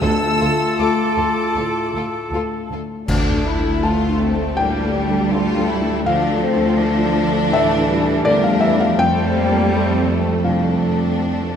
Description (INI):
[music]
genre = cinematic, emotional film score for orchestra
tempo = 81 BPM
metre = 4/4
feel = rubato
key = D minor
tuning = A4 = 439 Hz
[part]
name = rich studio violin section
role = melody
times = 0.0-11.6 s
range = G4 to E6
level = -30 LUFS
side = left 2 dB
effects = none
[part]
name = clear oboe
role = second line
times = 0.0-2.7 s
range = A4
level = -27 LUFS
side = left 1 dB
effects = none
[part]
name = hollow flute section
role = second line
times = 0.0-2.7 s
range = A5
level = -25 LUFS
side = left 1 dB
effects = none
[part]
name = mellow clarinet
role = second line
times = 0.0-2.7 s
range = F4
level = -30 LUFS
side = right 2 dB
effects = none
[part]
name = rich studio violin section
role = second line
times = 0.0-11.6 s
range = A3 to A4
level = -25 LUFS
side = left 3 dB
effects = none
[part]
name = felt-muted upright piano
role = accompaniment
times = 0.0-11.6 s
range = C2 to A5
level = -20 LUFS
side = left 3 dB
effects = none
[part]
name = rich studio viola section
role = accompaniment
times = 0.0-11.6 s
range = G3 to A4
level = -26 LUFS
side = right 1 dB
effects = none
[part]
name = dark French horn section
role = sustained chords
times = 0.0-2.8 s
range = A3 to F4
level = -26 LUFS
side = left 3 dB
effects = none
[part]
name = rich studio cello section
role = bass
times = 0.0-11.5 s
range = D2 to A3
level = -23 LUFS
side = right 4 dB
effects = none
[part]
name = rich studio double bass section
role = bass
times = 0.0-11.6 s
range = D2 to F2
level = -25 LUFS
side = right 2 dB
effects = none
[part]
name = timpani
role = percussion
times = 0.0-4.2 s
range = D3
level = -27 LUFS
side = left 2 dB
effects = none
[part]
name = clash cymbals and concert bass drum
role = percussion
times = 3.1-4.5 s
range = none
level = -24 LUFS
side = equal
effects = none
[sound]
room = moderate scoring stage reverb, RT60 2.1 s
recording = none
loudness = -15 LUFS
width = side -8 dB against mid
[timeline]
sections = 0.0-3.1 A section; 3.1-11.6 B section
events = band accent 3.1-3.8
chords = 0.0 Dm; 9.0 F